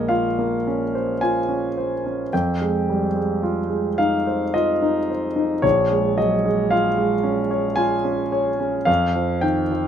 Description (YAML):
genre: classical, impressionist solo piano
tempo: 54 BPM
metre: 3/4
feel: rubato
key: Bb minor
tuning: A4 = 440 Hz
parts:
  - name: clear concert grand piano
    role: solo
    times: 0.0-9.9 s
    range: Bb1 to Ab5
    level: -19 LUFS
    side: equal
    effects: none
room: light reverb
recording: minimal, uncompressed stereo recording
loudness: -19 LUFS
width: side -8 dB against mid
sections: 0.0-9.9 A section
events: none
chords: 0.0 Bbmadd9; 2.3 Fm9; 5.6 Bbm7; 8.9 F7(no3)